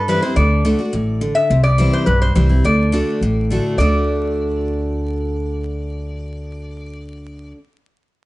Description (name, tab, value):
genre	bluegrass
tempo	211 BPM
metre	4/4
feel	straight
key	D mixolydian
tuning	A4 = 436 Hz
part	lap resonator guitar	melody	0.0-7.5 s	B4 to E5	-21 LUFS	left 2 dB	none
part	picked steel-string acoustic guitar	accompaniment	0.0-7.6 s	G2 to F#4	-20 LUFS	equal	none
part	upright bass	bass	0.0-7.5 s	A1 to G2	-19 LUFS	equal	none
room	light reverb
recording	vinyl crackle, nothing above 10.6 kHz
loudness	-15 LUFS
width	side -18 dB against mid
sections	0.0-1.5 A section; 1.5-3.8 B section; 3.8-6.1 C section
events	none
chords	0.4 D; 1.5 C; 2.6 D